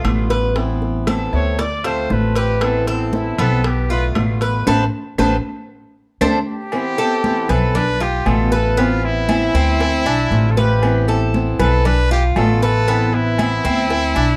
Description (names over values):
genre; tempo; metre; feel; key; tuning
latin, Cuban son and guajira; 117 BPM; 4/4; straight; A minor; A4 = 440 Hz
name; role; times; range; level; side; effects
picked swing-style acoustic guitar; accompaniment; 0.0-13.9 s; B2 to F4; -26 LUFS; equal; none
Cuban tres; arpeggios; 0.0-14.4 s; B3 to D5; -24 LUFS; equal; none
upright bass; bass; 0.0-14.4 s; A1 to D2; -21 LUFS; equal; none
bongos and cowbell; percussion; 0.0-14.2 s; none; -33 LUFS; equal; none
claves; percussion; 0.0-14.4 s; none; -38 LUFS; equal; none
timbales and agogo bells; percussion; 0.0-14.4 s; none; -29 LUFS; equal; none
congas; percussion; 0.1-14.4 s; none; -27 LUFS; equal; none
clear trumpet; melody; 1.3-14.4 s; C4 to D5; -24 LUFS; equal; none
room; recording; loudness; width
light reverb; dark, warm production; -17 LUFS; mono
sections
0.0-6.7 A section; 6.7-14.4 B section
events
trumpet solo 0.0-6.7; band accent 4.7-6.7; drum fill 5.7-6.7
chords
0.0 Bm7b5; 0.6 Amadd9; 1.6 Dm7; 2.6 Amadd9; 3.6 Bm7b5; 4.7 Amadd9; 5.7 D5; 6.7 Amadd9; 7.8 Bm7b5; 8.8 Amadd9; 9.8 Dm7; 10.8 Amadd9; 11.9 Bm7b5; 12.9 Amadd9